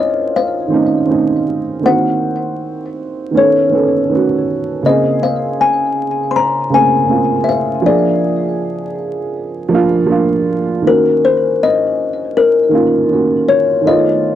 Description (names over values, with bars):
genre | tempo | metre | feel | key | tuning
hip hop | 80 BPM | 4/4 | swing 61% on 16ths | Bb minor | A4 = 440 Hz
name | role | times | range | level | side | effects
kalimba | melody | 0.0-14.4 s | Bb4 to C6 | -14 LUFS | left 5 dB | low-pass filter, cassette tape
dark upright piano | accompaniment | 0.0-14.4 s | Db3 to A4 | -15 LUFS | right 4 dB | low-pass filter, cassette tape
room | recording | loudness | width
moderate booth ambience, RT60 0.2 s | home recording on cassette, vinyl crackle | -12 LUFS | side -11 dB against mid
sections
0.0-14.4 A section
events
none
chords
0.0 Dbmaj9; 1.8 Cm7b5; 3.3 B9; 4.8 Bbm9; 7.8 Bb7; 10.8 Ebm7; 13.8 B7#11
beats
0.34 1.09 | 1.84 2.59 3.34 4.09 | 4.84 5.59 6.34 7.09 | 7.84 8.59 9.34 10.09 | 10.84 11.59 12.34 13.09 | 13.84